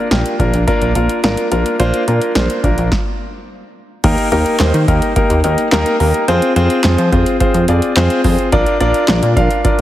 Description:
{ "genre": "synth-pop", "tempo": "107 BPM", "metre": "4/4", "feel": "straight", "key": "Eb major", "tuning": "A4 = 440 Hz", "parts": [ { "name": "warm concert grand piano", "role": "accompaniment", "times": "0.0-9.8 s", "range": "Bb3 to F5", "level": "-15 LUFS", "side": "left 1 dB", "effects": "none" }, { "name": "chorused synth bass", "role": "bass", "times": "0.1-9.8 s", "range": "Ab1 to F3", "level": "-15 LUFS", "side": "equal", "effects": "none" }, { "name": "electro analog drum machine", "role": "drums", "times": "0.1-9.8 s", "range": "crash cymbal, handclaps, hi-hat, kick drum, snare drum", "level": "-18 LUFS", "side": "equal", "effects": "none" } ], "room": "light reverb", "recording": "heavily compressed radio sound, multiband compression", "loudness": "-12 LUFS", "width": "side -13 dB against mid", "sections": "0.0-4.0 A section; 4.0-9.8 B section", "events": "stop 2.9-4.0", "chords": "0.0 Bb; 4.0 Eb; 6.3 Fm; 8.5 Bb", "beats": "0.11 0.67 1.24 | 1.80 2.36 2.92 3.48 | 4.04 4.60 5.16 5.72 | 6.28 6.84 7.40 7.96 | 8.52 9.09 9.65" }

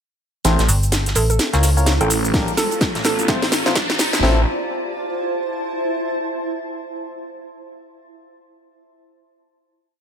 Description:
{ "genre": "bass house", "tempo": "127 BPM", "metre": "4/4", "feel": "swing 60% on 16ths", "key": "A phrygian", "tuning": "A4 = 441 Hz", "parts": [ { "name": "percussive organ stab", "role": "stabs", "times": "0.4-4.4 s", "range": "A3 to G5", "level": "-25 LUFS", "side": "left 3 dB", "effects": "chorus, sidechain pumping, ping-pong delay" }, { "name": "phased detuned saw bass", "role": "bass", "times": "0.4-4.4 s", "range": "A1", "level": "-19 LUFS", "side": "equal", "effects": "phaser, overdrive, sidechain pumping" }, { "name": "house drum kit", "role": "drums", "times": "0.4-4.2 s", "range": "hi-hat, shaker, snare drum", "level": "-21 LUFS", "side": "equal", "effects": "overdrive" }, { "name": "tight metal drum kit", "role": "drums", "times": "0.4-4.2 s", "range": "hi-hat, snare drum", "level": "-29 LUFS", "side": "right 3 dB", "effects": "sidechain pumping on hats, high-pass filter on hats, high-pass filter on snare, high-pass filter on room" }, { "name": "riser", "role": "sound effects", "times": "2.3-4.2 s", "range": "none", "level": "-28 LUFS", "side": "left 1 dB", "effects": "none" }, { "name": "granular cloud pad", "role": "texture", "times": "1.3-6.1 s", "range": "E4 to Bb5", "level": "-26 LUFS", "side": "right 1 dB", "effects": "built-in reverb, sidechain pumping" }, { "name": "metallic FM bass", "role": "bass", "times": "0.7-4.2 s", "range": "G1 to Db2", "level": "-18 LUFS", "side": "equal", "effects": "overdrive, sidechain pumping" }, { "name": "hollow square pluck", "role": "melody", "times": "1.2-3.3 s", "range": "A4", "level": "-26 LUFS", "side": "right 4 dB", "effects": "chorus, ping-pong delay" }, { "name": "house drum kit", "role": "drums", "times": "2.3-4.4 s", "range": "kick drum, snare drum", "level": "-23 LUFS", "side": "equal", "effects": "overdrive" } ], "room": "light reverb, digital ambience", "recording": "high-pass filter", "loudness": "-16 LUFS", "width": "side -8 dB against mid", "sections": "0.4-4.2 build; 4.2-6.1 final chord", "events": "build-up 0.4-4.2; drum fill 0.4-4.2; filter sweep on synth stab 0.4-4.2; filter sweep 0.4-4.2; riser 2.3-4.2", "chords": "0.4 Am; 1.4 Bbm; 2.3 Gm/A; 3.3 F/A; 4.2 Am", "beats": "| 0.45 0.92 1.39 1.87 | 2.34 2.81 3.28 3.76 | 4.23 4.70 5.17 5.65" }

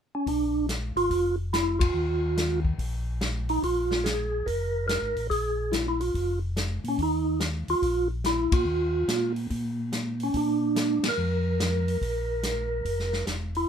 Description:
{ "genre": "soul jazz organ trio", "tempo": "143 BPM", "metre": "4/4", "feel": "swing 66% on 8ths", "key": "Bb mixolydian", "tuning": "A4 = 444 Hz", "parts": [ { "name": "percussive tonewheel organ", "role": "melody", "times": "0.1-13.7 s", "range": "Db4 to Bb4", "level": "-26 LUFS", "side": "right 1 dB", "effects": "fast rotary speaker" }, { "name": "mellow tonewheel organ", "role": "bass", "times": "0.3-13.7 s", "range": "E1 to Bb2", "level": "-30 LUFS", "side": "equal", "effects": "chorus vibrato, slow rotary speaker" }, { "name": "vintage drum kit", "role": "drums", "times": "0.3-13.6 s", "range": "hi-hat, kick drum, ride cymbal, snare drum", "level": "-31 LUFS", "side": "left 1 dB", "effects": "none" } ], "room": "little or no reverb", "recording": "minimal, uncompressed stereo recording", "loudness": "-24 LUFS", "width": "side -8 dB against mid", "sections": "0.3-13.7 A section", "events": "band accent 1.7, 8.5, 11.0", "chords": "0.3 Bb7; 1.9 Ebsus2; 3.6 Bb5; 7.0 Ebsus2; 10.3 Bb", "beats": "| 0.27 0.69 1.11 1.53 | 1.95 2.37 2.79 3.21 | 3.63 4.05 4.47 4.89 | 5.31 5.72 6.14 6.56 | 6.98 7.40 7.82 8.24 | 8.66 9.08 9.50 9.92 | 10.34 10.76 11.18 11.60 | 12.01 12.43 12.85 13.27" }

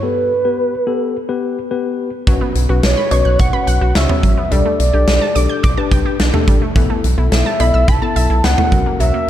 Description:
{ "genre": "synth-pop", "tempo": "107 BPM", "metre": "4/4", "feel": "straight", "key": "B minor", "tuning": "A4 = 440 Hz", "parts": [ { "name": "mellow horn-like synth lead", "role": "melody", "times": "0.0-9.3 s", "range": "B4 to A5", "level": "-18 LUFS", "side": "right 1 dB", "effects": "chorus" }, { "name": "mellow tine electric piano", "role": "accompaniment", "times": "0.0-9.3 s", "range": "B3 to C#5", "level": "-21 LUFS", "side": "left 7 dB", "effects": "none" }, { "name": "wide unison pluck", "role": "arpeggios", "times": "2.3-9.3 s", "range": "E3 to G6", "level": "-23 LUFS", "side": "right 4 dB", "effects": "auto-pan, digital delay" }, { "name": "round analog bass", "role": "bass", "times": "2.3-9.1 s", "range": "A1 to C#2", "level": "-15 LUFS", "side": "equal", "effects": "none" }, { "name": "huge arena drum kit", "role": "drums", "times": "2.3-9.1 s", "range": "cowbell, hi-hat, kick drum, snare drum, toms", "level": "-17 LUFS", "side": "equal", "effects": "none" } ], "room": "light reverb, studio reverb", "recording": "dark, warm production", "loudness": "-13 LUFS", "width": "side -11 dB against mid", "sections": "0.0-2.3 A section; 2.3-9.3 B section", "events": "break 0.0-2.3", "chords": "0.0 Gadd9; 2.3 Bsus2; 4.5 Gsus2/B; 6.8 Asus2/B; 8.7 F#/B", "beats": "| 0.03 0.59 1.15 1.71 | 2.27 2.83 3.39 3.95 | 4.51 5.08 5.64 6.20 | 6.76 7.32 7.88 8.44 | 9.00" }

